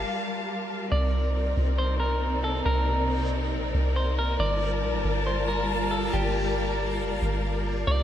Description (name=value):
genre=hip hop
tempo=138 BPM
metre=4/4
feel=half-time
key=C dorian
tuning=A4 = 440 Hz
part: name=dark symphonic string section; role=sustained chords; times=0.0-8.0 s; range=C3 to A5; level=-29 LUFS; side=left 2 dB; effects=none
part: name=soft 808-style bass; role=bass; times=0.0-8.0 s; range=F1 to C2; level=-27 LUFS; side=equal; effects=none
part: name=backwards swelling texture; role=texture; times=0.0-8.0 s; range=G3 to F5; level=-37 LUFS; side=equal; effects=built-in reverb
part: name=semi-hollow electric guitar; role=melody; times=0.9-8.0 s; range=G4 to D5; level=-30 LUFS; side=equal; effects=tape echo
room=moderate concert hall reverb, RT60 1.8 s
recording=none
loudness=-24 LUFS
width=side -11 dB against mid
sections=0.9-8.0 A section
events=break 0.0-0.9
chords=0.0 Gm7; 0.9 Cm7; 4.4 Gm7